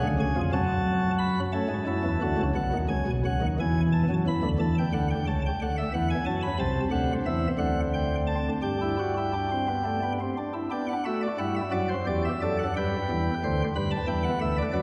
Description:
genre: classical, baroque-style 3-part fugue for pipe organ.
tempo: 59 BPM (dotted quarters).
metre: 6/8.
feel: straight.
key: B minor, G major from 6.6 s.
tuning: A4 = 440 Hz.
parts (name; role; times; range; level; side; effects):
chamber organ, sparkling flutes; solo; 0.0-14.8 s; B1 to B5; -27 LUFS; equal; none.
room: wet church reverb, RT60 3.5 s.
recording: heard from further back in the room.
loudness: -27 LUFS.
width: mono.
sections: 0.0-2.6 A section; 2.6-10.7 B section; 10.7-14.8 C section.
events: none.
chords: 0.0 C#; 0.5 F#m; 2.6 B; 3.6 E; 4.6 A7; 5.6 D; 6.6 Am/C; 7.6 D7; 8.6 G; 11.8 D7; 12.8 G.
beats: | 0.54 1.54 | 2.56 3.59 | 4.61 5.61 | 6.60 7.61 | 8.64 9.68 | 10.72 11.75 | 12.77 13.76 | 14.76.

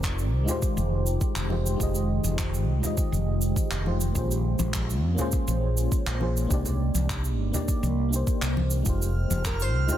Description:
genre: sunset chillout.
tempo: 102 BPM.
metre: 4/4.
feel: straight.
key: F minor.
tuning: A4 = 440 Hz.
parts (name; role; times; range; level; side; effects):
mellow FM electric piano; accompaniment; 0.0-10.0 s; Ab3 to Eb5; -32 LUFS; equal; chorus, tremolo, auto-pan, digital delay.
shimmering ambient pad; sustained chords; 0.0-10.0 s; Eb3 to G5; -33 LUFS; right 1 dB; chorus, built-in reverb, phaser.
mellow fretless electric bass; bass; 0.0-9.9 s; F1 to F2; -26 LUFS; equal; none.
cabasa and handclaps; drums; 0.0-10.0 s; none; -34 LUFS; right 2 dB; none.
electronic kick drum; drums; 0.0-9.6 s; none; -28 LUFS; equal; none.
congas; percussion; 0.5-10.0 s; none; -34 LUFS; left 2 dB; none.
drifting glass-harmonics texture; texture; 9.0-10.0 s; F6; -35 LUFS; right 6 dB; chorus, built-in reverb.
flamenco guitar; melody; 9.5-10.0 s; Bb4 to C5; -32 LUFS; left 1 dB; none.
room: light reverb, studio reverb.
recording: dense, heavily limited modern master.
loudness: -23 LUFS.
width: side -11 dB against mid.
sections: 0.0-10.0 A section.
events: none.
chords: 0.0 Fm9; 4.2 Bbm9; 6.5 Cm9; 8.9 Fm9.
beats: 0.04 0.62 1.21 | 1.80 2.39 2.98 3.57 | 4.15 4.74 5.33 5.92 | 6.51 7.10 7.68 8.27 | 8.86 9.45.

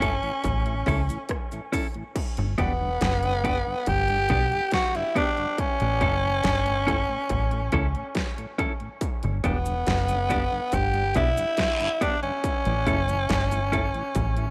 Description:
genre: roots reggae.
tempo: 70 BPM.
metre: 4/4.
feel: straight.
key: unclear.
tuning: A4 = 440 Hz.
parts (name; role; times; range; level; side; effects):
growling tenor saxophone; melody; 0.0-14.5 s; B3 to G4; -29 LUFS; equal; dub echo.
clean electric guitar; accompaniment; 0.0-13.9 s; B3 to A4; -34 LUFS; equal; dub echo.
mellow tonewheel organ; accompaniment; 0.0-14.5 s; G2 to E4; -40 LUFS; equal; slow rotary speaker, dub echo.
deep dub fingered electric bass; bass; 0.0-14.5 s; E1 to C#2; -29 LUFS; equal; none.
dubstep drum kit; drums; 0.0-14.5 s; crash cymbal, hi-hat, kick drum, rim click, snare drum; -31 LUFS; equal; distortion.
cabasa and guiro; percussion; 0.0-1.9, 9.0-14.4 s; none; -39 LUFS; equal; none.
room: little or no reverb.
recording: none.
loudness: -25 LUFS.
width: mono.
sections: 0.0-2.2 A section; 2.2-14.5 B section.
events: none.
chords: 0.0 A; 2.2 G; 5.6 A; 9.0 G; 12.4 A.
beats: 0.45 1.30 | 2.16 3.02 3.87 4.73 | 5.59 6.44 7.30 8.16 | 9.02 9.87 10.73 11.59 | 12.44 13.30 14.15.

